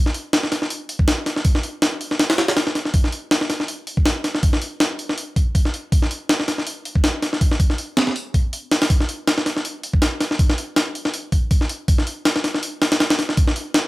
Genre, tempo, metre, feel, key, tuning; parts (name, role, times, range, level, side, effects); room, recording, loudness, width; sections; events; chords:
drum and bass; 161 BPM; 4/4; swing 55% on 16ths
breakbeat sampler-style drum kit; drums; 0.1-13.8 s; hi-hat, kick drum, snare drum; -18 LUFS; equal
digital ambience; -18 LUFS; side -19 dB against mid
0.0-13.9 A section